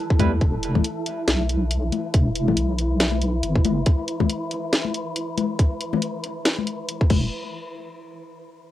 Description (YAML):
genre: deep dubstep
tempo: 139 BPM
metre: 4/4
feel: swing 57% on 16ths, half-time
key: E minor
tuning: A4 = 440 Hz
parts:
  - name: wind-like tuned noise texture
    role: texture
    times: 0.0-7.3 s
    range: E3 to A4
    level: -29 LUFS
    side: equal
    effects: built-in reverb, cassette tape
  - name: electronic kick drum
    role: drums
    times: 0.1-7.2 s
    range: none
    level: -18 LUFS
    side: equal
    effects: cassette tape
  - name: deep soft wobble bass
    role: bass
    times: 0.2-3.9, 7.1-7.3 s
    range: E1 to E2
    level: -23 LUFS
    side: equal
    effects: chorus
  - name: garage drum kit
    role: drums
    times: 0.2-7.2 s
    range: crash cymbal, hi-hat, snare drum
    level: -24 LUFS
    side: equal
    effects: cassette tape
  - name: congas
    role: percussion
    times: 0.2-7.2 s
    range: none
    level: -27 LUFS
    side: left 8 dB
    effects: dub echo
room: light reverb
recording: home recording on cassette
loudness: -20 LUFS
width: side -13 dB against mid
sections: 0.4-7.3 A section; 7.3-8.7 B section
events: none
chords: 0.4 E5; 7.1 N.C.